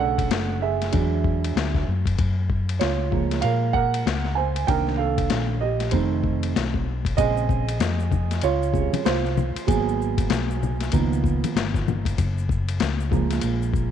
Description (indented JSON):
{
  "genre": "hip hop, jazz-hop",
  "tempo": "96 BPM",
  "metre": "4/4",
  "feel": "swing 60% on 16ths",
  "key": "Bb minor",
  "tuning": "A4 = 440 Hz",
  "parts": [
    { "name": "dark concert grand piano", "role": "accompaniment", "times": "0.0-13.9 s", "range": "C3 to Ab5", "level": "-25 LUFS", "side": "right 10 dB", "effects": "none" },
    { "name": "hollow-body short-scale fingered electric bass", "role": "bass", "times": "0.0-13.9 s", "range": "F1 to Bb2", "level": "-25 LUFS", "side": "left 1 dB", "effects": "none" },
    { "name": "boom bap sampler-style drum kit", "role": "drums", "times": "0.2-13.9 s", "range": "hi-hat, kick drum, ride cymbal, snare drum", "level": "-26 LUFS", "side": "left 4 dB", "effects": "none" },
    { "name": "maracas and congas", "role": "percussion", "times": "7.2-13.9 s", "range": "none", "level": "-31 LUFS", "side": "left 10 dB", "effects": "none" }
  ],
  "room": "light reverb",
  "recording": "1960s-style stereo with parts hard left and right",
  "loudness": "-21 LUFS",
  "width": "side -9 dB against mid",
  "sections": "0.0-7.2 A section; 7.2-13.9 B section",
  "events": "grand piano solo 0.0-7.2, 7.2-13.9",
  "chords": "0.0 Bm7; 0.9 E9; 2.2 Gbmaj7; 4.7 Cm7; 5.9 F7; 7.2 Bbm9; 9.7 Abm7; 10.9 Db13; 12.2 Gbmaj7",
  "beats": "0.30 0.93 1.55 | 2.18 2.81 3.43 4.05 | 4.68 5.30 5.93 6.55 | 7.18 7.80 8.43 9.05 | 9.68 10.30 10.93 11.55 | 12.18 12.80 13.43"
}